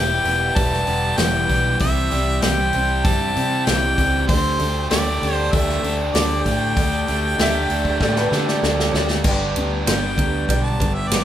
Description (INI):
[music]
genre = folk rock and heartland rock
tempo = 97 BPM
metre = 4/4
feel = straight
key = unclear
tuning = A4 = 440 Hz
[part]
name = clear harmonica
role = melody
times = 0.0-11.2 s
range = C5 to A5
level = -23 LUFS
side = left 1 dB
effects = none
[part]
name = picked steel-string acoustic guitar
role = accompaniment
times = 0.0-11.2 s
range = E2 to G4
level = -28 LUFS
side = left 3 dB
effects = none
[part]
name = warm concert grand piano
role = accompaniment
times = 0.0-11.2 s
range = G4 to G5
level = -33 LUFS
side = right 2 dB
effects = none
[part]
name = accordion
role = sustained chords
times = 0.0-11.2 s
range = G3 to G4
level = -32 LUFS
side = right 3 dB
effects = none
[part]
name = raw garage guitar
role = riff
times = 0.0-11.2 s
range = E2 to G4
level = -24 LUFS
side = right 1 dB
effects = overdrive
[part]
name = fingered electric bass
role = bass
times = 0.0-11.2 s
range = E1 to D3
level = -24 LUFS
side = equal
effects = none
[part]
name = natural country drum kit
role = drums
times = 0.3-11.2 s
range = crash cymbal, hi-hat, kick drum, ride cymbal, snare drum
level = -22 LUFS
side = equal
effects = none
[part]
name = clear upright piano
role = second line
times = 7.4-9.3 s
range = B4 to E5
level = -27 LUFS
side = right 1 dB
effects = none
[sound]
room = moderate large studio reverb, RT60 0.9 s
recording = band playing live in one room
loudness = -17 LUFS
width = side -11 dB against mid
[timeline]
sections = 0.0-9.2 A section; 9.2-11.2 B section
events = drum fill 8.0-9.2; harmonica solo 9.2-11.2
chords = 0.0 Em; 1.8 C; 4.3 Dsus4; 9.2 G